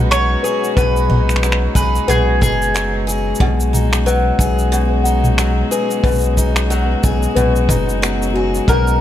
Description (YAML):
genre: folktronica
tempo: 91 BPM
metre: 4/4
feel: swing 56% on 16ths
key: B major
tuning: A4 = 442 Hz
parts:
  - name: mandolin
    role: melody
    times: 0.0-3.0, 8.7-9.0 s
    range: G#4 to C#5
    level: -19 LUFS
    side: right 1 dB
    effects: tape echo
  - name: small celesta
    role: second line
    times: 0.0-8.7 s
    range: F#4 to F#5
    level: -23 LUFS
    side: left 5 dB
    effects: tape echo
  - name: warm string quartet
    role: sustained chords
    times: 0.0-9.0 s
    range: G#3 to B4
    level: -24 LUFS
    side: equal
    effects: none
  - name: picked acoustic archtop guitar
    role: arpeggios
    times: 0.0-9.0 s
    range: B2 to G#4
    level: -21 LUFS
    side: left 3 dB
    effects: tape echo
  - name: warm sub bass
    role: bass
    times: 0.0-9.0 s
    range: F#1 to B1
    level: -18 LUFS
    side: equal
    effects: none
  - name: organic electronic drum kit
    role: drums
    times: 0.1-9.0 s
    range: finger snaps, shaker, toms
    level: -21 LUFS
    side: equal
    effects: none
  - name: kick drum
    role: drums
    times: 0.8-8.8 s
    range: none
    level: -18 LUFS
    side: equal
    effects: none
room: light reverb, small room reverb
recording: vinyl crackle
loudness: -13 LUFS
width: side -11 dB against mid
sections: 0.0-9.0 A section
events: none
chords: 0.0 B6